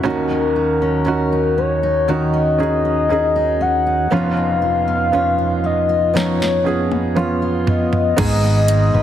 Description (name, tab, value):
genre	pop ballad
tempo	59 BPM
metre	4/4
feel	straight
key	unclear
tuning	A4 = 438 Hz
part	felt-muted upright piano	accompaniment	0.0-9.0 s	E#1 to G#4	-22 LUFS	right 5 dB	none
part	percussive tonewheel organ	sustained chords	0.0-9.0 s	D#2 to F#4	-22 LUFS	right 2 dB	slow rotary speaker
part	fingerpicked steel-string acoustic guitar	arpeggios	0.0-9.0 s	G#2 to C#5	-23 LUFS	left 4 dB	tape echo
part	mellow horn-like synth lead	melody	0.1-9.0 s	A#4 to F#5	-19 LUFS	left 3 dB	chorus, tape echo
part	house drum kit	drums	6.2-8.9 s	crash cymbal, hi-hat, kick drum, snare drum, toms	-22 LUFS	equal	overdrive
part	mellow fretless electric bass	bass	8.2-9.0 s	G#1	-16 LUFS	equal	none
room	light reverb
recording	heavily compressed radio sound, multiband compression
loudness	-15 LUFS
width	side -10 dB against mid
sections	0.0-8.2 A section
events	drum fill 6.2-8.2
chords	0.0 D#m7; 4.1 C#7/E#; 8.2 G#m